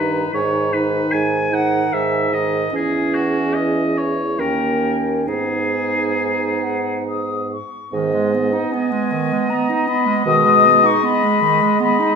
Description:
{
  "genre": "classical, slow romantic movement for wind quintet",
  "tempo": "66-79 BPM",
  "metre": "3/4",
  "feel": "rubato",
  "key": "G# minor",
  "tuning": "A4 = 443 Hz",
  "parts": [
    { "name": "mellow concert flute", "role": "melody", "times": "0.0-12.2 s", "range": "F#5 to D#6", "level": "-19 LUFS", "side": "left 8 dB", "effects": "none" },
    { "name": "clear oboe", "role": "second line", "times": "0.0-12.2 s", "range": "F#4 to G#5", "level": "-22 LUFS", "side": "left 1 dB", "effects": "none" },
    { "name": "bright clarinet", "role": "accompaniment", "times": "0.0-12.2 s", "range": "D#3 to D#4", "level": "-23 LUFS", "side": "right 6 dB", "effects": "none" },
    { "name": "clear French horn", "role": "accompaniment", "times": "0.0-12.2 s", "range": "D#3 to B3", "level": "-25 LUFS", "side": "right 2 dB", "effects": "none" },
    { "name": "mellow bassoon", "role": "bass", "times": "0.0-10.9 s", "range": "D#2 to B2", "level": "-22 LUFS", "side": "right 3 dB", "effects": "none" }
  ],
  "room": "wet recital hall reverb, RT60 1.6 s",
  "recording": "minimal, uncompressed stereo recording",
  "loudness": "-16 LUFS",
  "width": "side -5 dB against mid",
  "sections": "0.0-7.9 A section; 7.9-12.2 B section",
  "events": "none",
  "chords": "0.3 G#5; 2.7 C#m/E; 4.4 D#7; 5.3 G#m; 10.3 G#m/B"
}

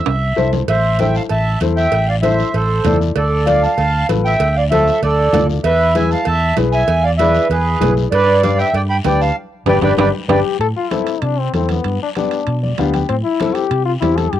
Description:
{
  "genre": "latin, cumbia",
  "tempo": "193 BPM",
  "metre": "4/4",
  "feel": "straight",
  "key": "A minor",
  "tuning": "A4 = 440 Hz",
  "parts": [
    { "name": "accordion", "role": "melody", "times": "0.0-10.4 s", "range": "G#4 to B5", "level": "-16 LUFS", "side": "right 2 dB", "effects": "cassette tape" },
    { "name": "fingered electric bass", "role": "bass", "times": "0.1-14.4 s", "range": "G1 to C3", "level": "-18 LUFS", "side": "equal", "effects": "none" },
    { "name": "congas", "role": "percussion", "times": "0.1-14.3 s", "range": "none", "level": "-25 LUFS", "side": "right 1 dB", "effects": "none" },
    { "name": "guiro", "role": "percussion", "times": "0.1-14.4 s", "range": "none", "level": "-35 LUFS", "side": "left 10 dB", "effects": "none" },
    { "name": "timbales and cowbell", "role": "percussion", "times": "0.1-14.4 s", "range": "none", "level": "-25 LUFS", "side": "right 13 dB", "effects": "none" },
    { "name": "warm upright piano", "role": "accompaniment", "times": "0.4-14.2 s", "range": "B3 to G5", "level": "-20 LUFS", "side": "left 7 dB", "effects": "cassette tape" },
    { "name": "bright trombone", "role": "second line", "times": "10.3-14.4 s", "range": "B3 to A4", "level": "-19 LUFS", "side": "left 7 dB", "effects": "cassette tape" }
  ],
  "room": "moderate booth ambience, RT60 0.2 s",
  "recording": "home recording on cassette",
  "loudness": "-13 LUFS",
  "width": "side -11 dB against mid",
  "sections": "0.7-10.6 A section; 10.6-14.4 B section",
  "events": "drum fill 0.0-0.7, 10.0-10.6; band accent 9.4-10.6; upright piano fill 9.7-10.6, 12.5-13.1; trombone solo 10.6-14.4",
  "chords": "0.0 Am; 3.2 Dm; 5.6 E; 8.1 G; 10.6 Am; 11.8 G; 13.1 Am"
}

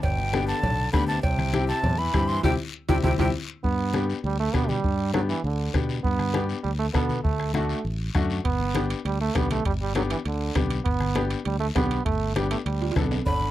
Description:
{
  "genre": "latin, cumbia",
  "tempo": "200 BPM",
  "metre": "4/4",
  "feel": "straight",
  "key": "G major",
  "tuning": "A4 = 440 Hz",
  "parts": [
    { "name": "breathy jazz flute", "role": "melody", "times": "0.0-3.3, 13.3-13.5 s", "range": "G5 to C6", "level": "-28 LUFS", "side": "left 1 dB", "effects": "none" },
    { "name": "brilliant trombone", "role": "second line", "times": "0.0-13.5 s", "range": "B2 to B3", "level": "-29 LUFS", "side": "right 6 dB", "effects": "none" },
    { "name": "fingered electric bass", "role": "bass", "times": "0.0-13.5 s", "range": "G1 to B2", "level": "-27 LUFS", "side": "equal", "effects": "none" },
    { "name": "bombo", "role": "percussion", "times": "0.0-13.4 s", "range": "none", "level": "-28 LUFS", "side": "equal", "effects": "none" },
    { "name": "congas", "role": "percussion", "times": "0.0-13.5 s", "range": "none", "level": "-32 LUFS", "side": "left 2 dB", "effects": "none" },
    { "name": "cowbell and timbales", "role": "percussion", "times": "0.0-3.3, 8.4-13.4 s", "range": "none", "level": "-33 LUFS", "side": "right 7 dB", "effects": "none" },
    { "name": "guiro", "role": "percussion", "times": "0.0-13.5 s", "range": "none", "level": "-40 LUFS", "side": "left 8 dB", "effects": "none" },
    { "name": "bright upright piano", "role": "accompaniment", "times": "0.3-13.2 s", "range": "A3 to A4", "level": "-29 LUFS", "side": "left 6 dB", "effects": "none" }
  ],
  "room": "little or no reverb",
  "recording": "dry, close 1970s-style studio recording",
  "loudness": "-22 LUFS",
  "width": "side -14 dB against mid",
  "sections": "0.0-3.6 A section; 3.6-13.3 B section",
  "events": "band accent 2.4-3.6; drum fill 3.2-3.6, 12.8-13.3; trombone solo 3.6-13.3",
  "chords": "0.0 G; 1.2 C; 3.6 G; 7.2 D; 8.4 G"
}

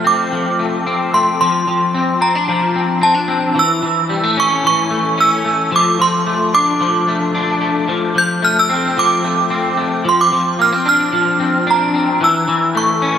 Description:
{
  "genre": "dream pop",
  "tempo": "111 BPM",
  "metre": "4/4",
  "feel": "straight",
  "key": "unclear",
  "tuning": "A4 = 440 Hz",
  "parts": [
    { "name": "electric guitar at the edge of break-up", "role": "arpeggios", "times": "0.0-13.2 s", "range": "E3 to D4", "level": "-17 LUFS", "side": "left 3 dB", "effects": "ensemble chorus, digital delay" },
    { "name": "synth chime", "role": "melody", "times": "0.1-13.2 s", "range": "A5 to G6", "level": "-15 LUFS", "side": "right 2 dB", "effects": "ensemble chorus, phaser, tremolo, digital delay" }
  ],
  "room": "wet huge ambient reverb, RT60 6.8 s",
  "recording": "none",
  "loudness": "-13 LUFS",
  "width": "side -9 dB against mid",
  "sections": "0.0-13.2 A section",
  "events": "none",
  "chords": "0.0 F; 1.4 Bbadd9; 3.6 A; 5.7 Dm; 7.9 F; 10.0 Bbadd9; 12.2 A"
}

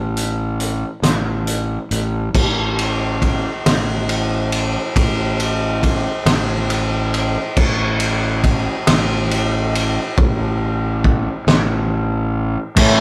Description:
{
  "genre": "post-rock",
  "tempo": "46 BPM (dotted quarters)",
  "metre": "6/8",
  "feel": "straight",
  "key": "unclear",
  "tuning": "A4 = 440 Hz",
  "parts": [
    { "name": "fuzz fingered electric bass", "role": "bass", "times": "0.0-13.0 s", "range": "A1", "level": "-22 LUFS", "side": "equal", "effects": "overdrive" },
    { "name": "loose indie drum kit", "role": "drums", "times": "0.2-13.0 s", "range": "crash cymbal, hi-hat, kick drum, ride cymbal, snare drum", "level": "-20 LUFS", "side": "equal", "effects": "none" },
    { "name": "fuzz guitar", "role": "riff", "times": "12.8-13.0 s", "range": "A2 to E4", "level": "-15 LUFS", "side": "equal", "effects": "distortion" }
  ],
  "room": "moderate studio ambience, RT60 0.5 s",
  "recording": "band playing live in one room",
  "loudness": "-18 LUFS",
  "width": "mono",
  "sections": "0.0-2.3 A section; 2.3-12.8 B section",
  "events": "build-up 2.3-12.8",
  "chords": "none"
}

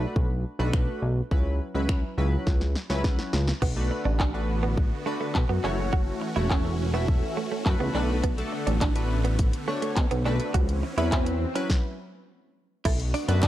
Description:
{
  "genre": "dance-pop",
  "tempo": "104 BPM",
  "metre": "4/4",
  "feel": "straight",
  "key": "B minor",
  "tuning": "A4 = 440 Hz",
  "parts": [
    { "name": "chorused retro synth keys", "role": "accompaniment", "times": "0.0-13.5 s", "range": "F#3 to E5", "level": "-32 LUFS", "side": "left 1 dB", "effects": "sidechain pumping" },
    { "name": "chorused synth bass", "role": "bass", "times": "0.0-13.5 s", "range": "E1 to B2", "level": "-26 LUFS", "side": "equal", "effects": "sidechain pumping" },
    { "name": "house drum kit", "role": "drums", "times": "0.2-13.5 s", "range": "crash cymbal, finger snaps, handclaps, hi-hat, kick drum, snare drum", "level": "-26 LUFS", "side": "equal", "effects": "none" },
    { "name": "supersaw chords", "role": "sustained chords", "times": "3.6-13.5 s", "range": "D3 to F#4", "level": "-35 LUFS", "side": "equal", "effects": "phaser, sidechain pumping" },
    { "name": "direct-recorded clean electric guitar", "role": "riff", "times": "3.6-13.5 s", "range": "A3 to F#4", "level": "-32 LUFS", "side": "right 6 dB", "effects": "wide subtle chorus" },
    { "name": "swell", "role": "sound effects", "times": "9.5-11.7 s", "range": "none", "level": "-37 LUFS", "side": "left 3 dB", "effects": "none" },
    { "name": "mallet-like synth pluck", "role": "arpeggios", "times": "12.9-13.4 s", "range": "A4 to F#5", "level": "-37 LUFS", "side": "left 2 dB", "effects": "chorus, sidechain pumping, tape echo" },
    { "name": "group handclap", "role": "percussion", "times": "13.4-13.5 s", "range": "none", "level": "-36 LUFS", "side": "left 1 dB", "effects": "none" }
  ],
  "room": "digital ambience",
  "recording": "dry, gritty hardware recording",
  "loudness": "-24 LUFS",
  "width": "side -14 dB against mid",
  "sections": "0.0-3.6 A section; 3.6-12.9 B section",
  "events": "drum fill 2.5-3.6; swell 9.5-12.9; stop 11.7-12.9",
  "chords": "0.0 Bm7; 1.3 F#7sus4/C#; 3.6 Bm7; 5.6 F#m7; 7.9 Bm7; 10.5 F#7sus4/C#; 12.9 Bm7"
}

